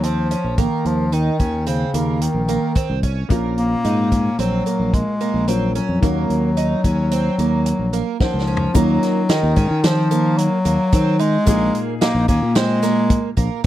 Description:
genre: progressive instrumental, band music in an uneven meter.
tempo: 110 BPM.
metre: 5/4.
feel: straight.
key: Eb dorian.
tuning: A4 = 441 Hz.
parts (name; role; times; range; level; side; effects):
clear bass clarinet; melody; 0.0-13.4 s; Db3 to Bb3; -20 LUFS; left 2 dB; none.
picked twelve-string acoustic guitar; arpeggios; 0.0-13.7 s; Bb3 to Eb4; -24 LUFS; right 11 dB; wide subtle chorus.
overdriven fingered electric bass; bass; 0.0-13.5 s; Bb1 to Eb3; -20 LUFS; equal; none.
vintage drum kit; drums; 0.0-13.5 s; hi-hat, kick drum, snare drum, toms; -20 LUFS; equal; none.
warm concert grand piano; accompaniment; 3.3-13.7 s; Bb2 to Gb5; -28 LUFS; left 8 dB; none.
egg shaker; percussion; 8.8-13.1 s; none; -35 LUFS; left 24 dB; none.
room: little or no reverb.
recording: dry, close 1970s-style studio recording.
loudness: -16 LUFS.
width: side -13 dB against mid.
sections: 0.0-8.7 A section; 8.7-13.7 B section.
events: drum fill 8.2-8.7.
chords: 0.0 Eb5; 3.3 Bbm; 6.0 Ebm7; 8.7 Ebm9; 11.5 Bb7sus4.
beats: 0.03 | 0.58 1.12 1.67 2.21 2.75 | 3.30 3.85 4.39 4.94 5.48 | 6.03 6.57 7.12 7.66 8.21 | 8.75 9.29 9.84 10.38 10.92 | 11.47 12.01 12.55 13.10 13.64.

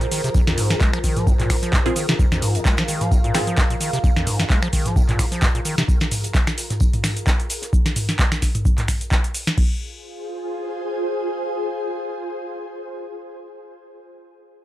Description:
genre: acid house.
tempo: 130 BPM.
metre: 4/4.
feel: swing 55% on 16ths.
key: F minor pentatonic.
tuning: A4 = 440 Hz.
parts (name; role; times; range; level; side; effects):
warbly tape-like pad; sustained chords; 0.0-5.9 s; F3 to F5; -31 LUFS; equal; chorus, built-in reverb, sidechain pumping.
acid bass, square; riff; 0.0-5.8 s; F2 to Ab3; -26 LUFS; equal; tube saturation, vintage 12-bit sampler grit, tape echo.
booming analog drum machine; drums; 0.0-9.7 s; crash cymbal, finger snaps, handclaps, hi-hat, shaker, snare drum, toms; -23 LUFS; equal; none.
ethereal airy pad; texture; 0.0-14.0 s; F4 to Bb5; -30 LUFS; equal; ensemble chorus, built-in reverb, sidechain pumping.
damped 70s drum kit; drums; 0.1-7.7 s; hi-hat, snare drum, tambourine; -38 LUFS; right 1 dB; none.
electronic kick drum; drums; 0.3-9.7 s; none; -19 LUFS; equal; none.
filtered dub chord stab; stabs; 1.9-3.5 s; C4 to Ab4; -26 LUFS; right 1 dB; phaser, analog chorus, tape echo.
room: light reverb.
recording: dry, gritty hardware recording.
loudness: -18 LUFS.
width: side -15 dB against mid.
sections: 0.0-9.6 A section; 9.6-13.3 B section.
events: drop 0.0-9.6.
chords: 0.0 Fm.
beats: | 0.35 0.81 1.27 1.73 | 2.19 2.65 3.12 3.58 | 4.04 4.50 4.96 5.42 | 5.88 6.35 6.81 7.27 | 7.73 8.19 8.65 9.12 | 9.58 10.04 10.50 10.96 | 11.42 11.88 12.35 12.81.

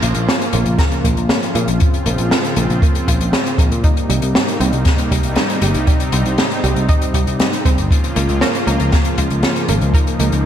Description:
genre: synthwave.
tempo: 118 BPM.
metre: 4/4.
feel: straight.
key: Bb dorian.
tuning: A4 = 437 Hz.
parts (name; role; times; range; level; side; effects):
soft supersaw; sustained chords; 0.0-10.5 s; C3 to F4; -21 LUFS; equal; sidechain pumping.
analog pluck; arpeggios; 0.0-10.3 s; G3 to Bb4; -25 LUFS; right 2 dB; chorus, vintage 12-bit sampler grit, ping-pong delay.
picked electric bass; bass; 0.0-10.4 s; G1 to Bb2; -18 LUFS; equal; sidechain pumping.
open jazz drum kit; drums; 0.0-10.4 s; hi-hat, snare drum; -20 LUFS; left 1 dB; gated reverb.
kick drum; drums; 0.8-10.0 s; none; -15 LUFS; equal; none.
room: moderate lush hall reverb, RT60 1.9 s, small room ambience.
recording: bright 1980s-style digital production.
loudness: -13 LUFS.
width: side -10 dB against mid.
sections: 0.0-10.5 A section.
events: none.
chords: 0.0 Bbm; 3.8 Cm7; 7.9 Bbm.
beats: 0.28 0.79 1.30 | 1.81 2.31 2.82 3.33 | 3.84 4.35 4.86 5.37 | 5.87 6.38 6.89 7.40 | 7.91 8.42 8.93 9.43 | 9.94 10.45.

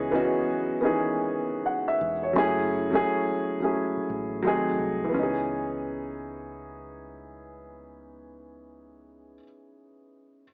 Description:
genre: hip hop.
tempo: 86 BPM.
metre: 4/4.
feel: swing 63% on 16ths.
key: C# minor.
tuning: A4 = 440 Hz.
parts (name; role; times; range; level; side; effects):
dark upright piano; accompaniment; 0.0-10.4 s; D#3 to F#5; -28 LUFS; equal; cassette tape, low-pass filter.
deep dub fingered electric bass; bass; 0.0-9.4 s; E1 to C#2; -42 LUFS; equal; none.
room: wet studio reverb, RT60 0.5 s.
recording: cassette tape, small speaker sound.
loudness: -27 LUFS.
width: mono.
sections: 0.0-5.1 A section; 5.1-7.9 B section.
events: none.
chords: 0.0 C#m9; 2.3 F#m9; 4.4 G#7b9; 5.1 C#m9.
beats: 0.25 0.95 1.65 | 2.35 3.04 3.74 4.44 | 5.14 5.83 6.53 7.23.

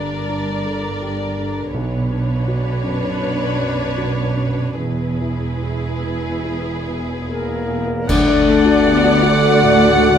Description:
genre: cinematic, emotional film score for orchestra.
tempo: 71-83 BPM.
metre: 4/4.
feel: rubato.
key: D major.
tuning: A4 = 440 Hz.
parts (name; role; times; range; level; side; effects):
warm studio violin section; melody; 0.0-10.2 s; B4 to F#5; -27 LUFS; left 3 dB; none.
rich studio violin section; second line; 0.0-10.2 s; G#4 to D5; -25 LUFS; equal; none.
dark grand piano; accompaniment; 0.0-10.2 s; B1 to D5; -23 LUFS; equal; none.
warm studio viola section; accompaniment; 0.0-10.2 s; A3 to E4; -26 LUFS; left 2 dB; none.
dark studio cello section; bass; 0.0-10.2 s; D2 to B2; -24 LUFS; right 3 dB; none.
warm studio double bass section; bass; 0.0-10.2 s; E1 to D2; -24 LUFS; right 4 dB; none.
cymbal swell, clash cymbals and concert bass drum; percussion; 4.8-9.6 s; none; -26 LUFS; equal; none.
mellow silver concert flute; second line; 7.3-10.2 s; Bb4 to F#5; -25 LUFS; left 2 dB; none.
mellow French horn section; sustained chords; 7.3-10.2 s; Bb3 to F#4; -18 LUFS; left 6 dB; none.
clear oboe; second line; 8.1-10.2 s; F#5; -23 LUFS; equal; none.
dark clarinet; second line; 8.1-10.2 s; D5; -26 LUFS; equal; none.
room: light reverb.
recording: close, detailed microphones.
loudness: -16 LUFS.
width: side -8 dB against mid.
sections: 0.0-8.1 A section; 8.1-10.2 B section.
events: band accent 8.1-8.9.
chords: 0.0 Gm; 1.7 Bmadd9; 4.8 E; 8.1 D.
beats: 0.28 1.01 | 1.74 2.47 3.21 3.98 | 4.79 5.63 6.46 7.28 | 8.09 8.86 9.62.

